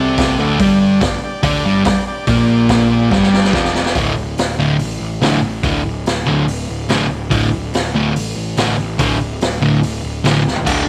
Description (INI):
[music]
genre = garage rock duo or trio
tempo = 143 BPM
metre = 4/4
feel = straight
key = unclear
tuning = A4 = 439 Hz
[part]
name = combo organ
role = sustained chords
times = 0.0-3.9, 10.7-10.9 s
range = D4 to D5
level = -27 LUFS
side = equal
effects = none
[part]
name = fuzz guitar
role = riff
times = 0.0-10.8 s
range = D2 to D4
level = -17 LUFS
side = equal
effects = distortion
[part]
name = fuzz picked electric bass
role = bass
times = 0.0-10.8 s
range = D1 to D2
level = -26 LUFS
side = equal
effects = overdrive
[part]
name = raw garage drum kit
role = drums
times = 0.2-10.8 s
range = crash cymbal, hi-hat, kick drum, snare drum, splash cymbal, toms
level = -22 LUFS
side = equal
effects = none
[sound]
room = light reverb, small room ambience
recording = none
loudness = -16 LUFS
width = mono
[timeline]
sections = 0.0-4.0 A section; 4.0-10.9 B section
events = drum fill 3.1-4.0, 10.5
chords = 0.0 D; 0.6 G5; 4.0 D5